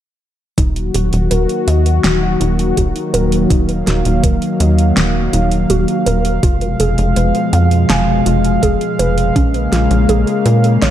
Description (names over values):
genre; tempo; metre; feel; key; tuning
synthwave; 82 BPM; 4/4; straight; Eb minor; A4 = 440 Hz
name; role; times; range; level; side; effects
warm analog pad; sustained chords; 0.6-10.9 s; Cb3 to F5; -16 LUFS; left 1 dB; chorus, sidechain pumping
warbly dusty pluck; arpeggios; 0.6-10.9 s; Db4 to Ab5; -22 LUFS; right 3 dB; chorus, digital delay
tight sequencer bass; bass; 0.6-10.9 s; Eb1 to Bb2; -15 LUFS; equal; sidechain pumping
electronic kick drum; drums; 0.6-9.5 s; none; -15 LUFS; equal; none
pop drum kit; drums; 0.6-10.9 s; hi-hat, snare drum; -21 LUFS; equal; none
room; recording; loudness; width
moderate lush hall reverb, RT60 2.2 s; dark, warm production; -12 LUFS; side -11 dB against mid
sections
0.6-10.9 A section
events
none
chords
0.6 Ebm; 6.4 Fdim; 9.4 Bbm7